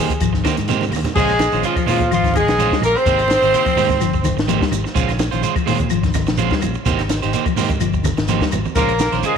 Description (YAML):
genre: afrobeat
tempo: 126 BPM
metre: 4/4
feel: swing 54% on 16ths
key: unclear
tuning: A4 = 440 Hz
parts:
  - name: mellow electric guitar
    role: arpeggios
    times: 0.0-9.3 s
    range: C3 to G3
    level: -24 LUFS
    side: left 13 dB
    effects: ensemble chorus
  - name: electric guitar at the edge of break-up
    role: stabs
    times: 0.0-9.4 s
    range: Ab3 to C5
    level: -23 LUFS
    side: right 11 dB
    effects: spring reverb
  - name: fingered electric bass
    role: bass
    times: 0.1-9.4 s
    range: G1 to Bb2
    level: -23 LUFS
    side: equal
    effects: none
  - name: compact cocktail drum kit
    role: drums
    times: 0.1-9.4 s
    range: crash cymbal, hi-hat, kick drum, snare drum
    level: -22 LUFS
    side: left 1 dB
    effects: none
  - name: shekere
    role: percussion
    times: 0.1-9.4 s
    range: none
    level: -30 LUFS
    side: right 8 dB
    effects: none
  - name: claves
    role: percussion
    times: 0.2-9.0 s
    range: none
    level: -36 LUFS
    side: left 13 dB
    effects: none
  - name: congas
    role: percussion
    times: 0.2-9.4 s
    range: none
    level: -27 LUFS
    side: right 8 dB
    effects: none
  - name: warm horn section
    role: melody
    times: 1.2-4.4, 8.8-9.4 s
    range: F4 to C5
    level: -18 LUFS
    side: left 2 dB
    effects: none
  - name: raspy tenor saxophone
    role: second line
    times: 1.2-4.4, 8.8-9.4 s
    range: F3 to C4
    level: -23 LUFS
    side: right 11 dB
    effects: none
room: light reverb, small room ambience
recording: 1960s-style stereo with parts hard left and right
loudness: -15 LUFS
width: side -7 dB against mid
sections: 0.0-1.2 A section; 1.2-9.4 B section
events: drum fill 0.8-1.2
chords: 0.0 Abmaj9; 5.0 Bbm9; 6.9 Abmaj9; 8.8 Bbm9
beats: 0.21 0.68 | 1.16 1.63 2.10 2.58 | 3.05 3.53 4.00 4.48 | 4.95 5.43 5.90 6.38 | 6.85 7.33 7.80 8.28 | 8.76 9.23